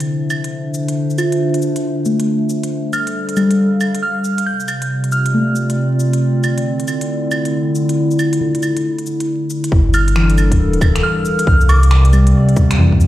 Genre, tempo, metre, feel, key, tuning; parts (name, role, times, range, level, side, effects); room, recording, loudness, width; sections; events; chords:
future garage; 137 BPM; 4/4; swing 64% on 16ths; D minor; A4 = 440 Hz
muted felt-like synth keys; accompaniment; 0.0-13.1 s; D3 to F4; -20 LUFS; left 1 dB; chorus, sidechain pumping, low-pass filter, tape echo
warbly tape-like pad; sustained chords; 0.0-13.1 s; C3 to F5; -18 LUFS; equal; chorus, built-in reverb, sidechain pumping
organic electronic drum kit; drums; 0.0-13.1 s; cabasa, claves, finger snaps, hi-hat; -26 LUFS; right 2 dB
glassy synth bell; melody; 2.9-5.6, 9.9-11.9 s; D6 to G6; -22 LUFS; right 2 dB; chorus, vintage 12-bit sampler grit, tape echo
warm sub bass; bass; 9.7-13.1 s; D1 to F2; -12 LUFS; equal; sidechain pumping
electronic kick drum; drums; 9.7-13.0 s; -13 LUFS; equal
moderate lush hall reverb, RT60 1.6 s, digital ambience; played on a big sound system in a bare room, large studio reverb, vinyl crackle; -13 LUFS; side -14 dB against mid
0.0-9.7 A section; 9.7-13.1 B section
filter sweep on synth keys 0.0-9.7
0.0 Dm7; 2.7 Gsus2; 4.5 Csus24; 6.2 Dm7; 9.7 Gm9; 11.5 C9sus4